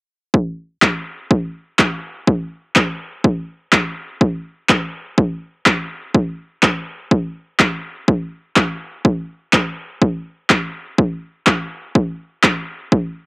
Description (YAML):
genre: deep house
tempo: 124 BPM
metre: 4/4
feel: swing 56% on 16ths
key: none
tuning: none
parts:
  - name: electronic kick drum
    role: drums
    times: 0.3-13.0 s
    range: none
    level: -16 LUFS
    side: equal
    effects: overdrive, high-pass filter on kick, cassette tape
  - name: electronic handclaps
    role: drums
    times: 0.8-12.5 s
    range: none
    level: -16 LUFS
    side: equal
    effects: overdrive, cassette tape
room: light reverb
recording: home recording on cassette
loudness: -16 LUFS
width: side -23 dB against mid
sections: 0.3-13.3 A section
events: none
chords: none